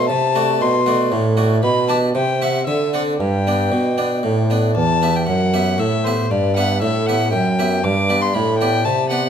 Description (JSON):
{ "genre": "classical, baroque-style sonata movement with continuo", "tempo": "117 BPM", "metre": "3/4", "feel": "straight", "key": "G major, E minor from 4.8 s", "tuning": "A4 = 442 Hz", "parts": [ { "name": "warm violin", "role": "melody", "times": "0.0-9.3 s", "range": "C5 to D6", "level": "-21 LUFS", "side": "left 5 dB", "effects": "none" }, { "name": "harpsichord", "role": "accompaniment", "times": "0.0-9.3 s", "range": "E2 to E5", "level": "-19 LUFS", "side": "right 1 dB", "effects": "none" }, { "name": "mellow bassoon", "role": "bass", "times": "0.0-9.3 s", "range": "E2 to D3", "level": "-20 LUFS", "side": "right 2 dB", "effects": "none" } ], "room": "moderate recital hall reverb, RT60 1.4 s", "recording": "none", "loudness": "-15 LUFS", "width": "side -8 dB against mid", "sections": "0.0-4.8 A section; 4.8-9.3 A section", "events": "none", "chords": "0.1 D7; 1.6 G/B; 2.1 C; 2.7 D7(no3); 3.2 G; 4.8 Em; 6.3 Em/G; 7.8 G" }